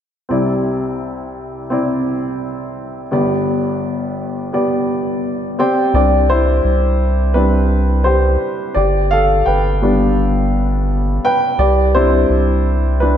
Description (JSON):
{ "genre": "piano-driven pop", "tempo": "85 BPM", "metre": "4/4", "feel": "straight", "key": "C major", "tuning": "A4 = 439 Hz", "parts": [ { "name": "warm upright piano", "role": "accompaniment", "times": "0.3-13.2 s", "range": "G1 to G5", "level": "-16 LUFS", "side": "left 1 dB", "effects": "none" }, { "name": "round analog bass", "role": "bass", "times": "5.9-13.2 s", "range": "G1 to C2", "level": "-15 LUFS", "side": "equal", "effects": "none" } ], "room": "moderate lush hall reverb, RT60 2.2 s", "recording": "dreamy mix soaked in reverb", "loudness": "-14 LUFS", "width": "side -9 dB against mid", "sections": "0.3-5.9 A section; 5.9-13.2 B section", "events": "upright piano solo 5.9-13.2", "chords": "0.3 Cadd9; 3.1 G; 5.6 Csus2; 8.8 G; 11.6 Csus2", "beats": "| 0.29 1.00 1.70 2.41 | 3.12 3.82 4.53 5.24 | 5.94 6.65 7.35 8.06 | 8.77 9.47 10.18 10.88 | 11.59 12.29 13.00" }